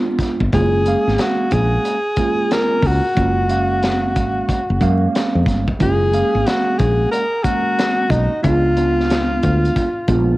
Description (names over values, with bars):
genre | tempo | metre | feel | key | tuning
hip hop, jazz-hop | 91 BPM | 4/4 | swing 65% on 16ths | F# major | A4 = 438 Hz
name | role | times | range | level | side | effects
mellow tine electric piano | accompaniment | 0.0-10.4 s | G#3 to E#5 | -21 LUFS | right 3 dB | medium stereo tremolo, cassette tape
crunchy breakbeat drum kit | drums | 0.2-10.3 s | hi-hat, kick drum, snare drum | -22 LUFS | equal | none
woody fretless electric bass | bass | 0.4-10.3 s | F#1 to F#2 | -18 LUFS | equal | none
clear alto saxophone | melody | 0.5-10.4 s | D#4 to A#4 | -19 LUFS | left 1 dB | cassette tape, tape echo
room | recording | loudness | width
light reverb, studio reverb | home recording on cassette, vinyl crackle | -15 LUFS | side -18 dB against mid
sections
0.0-5.8 A section; 5.8-10.4 A section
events
none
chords
0.0 C#7b9 (rootless); 0.5 F#maj9; 8.4 C#7b9